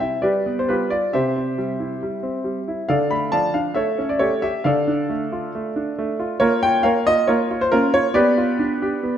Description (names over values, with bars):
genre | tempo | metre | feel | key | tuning
classical-period piano sonatina | 136 BPM | 4/4 | rubato | unclear | A4 = 440 Hz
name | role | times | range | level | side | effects
clear concert grand piano | solo | 0.0-9.2 s | C3 to B5 | -18 LUFS | equal | none
room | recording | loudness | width
wet recital hall reverb, RT60 1.6 s | none | -18 LUFS | side -9 dB against mid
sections
0.0-9.2 A section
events
none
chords
0.2 G7; 1.1 C; 2.9 Dm; 3.8 A7; 4.7 Dm; 6.4 Bbm; 8.2 G7/B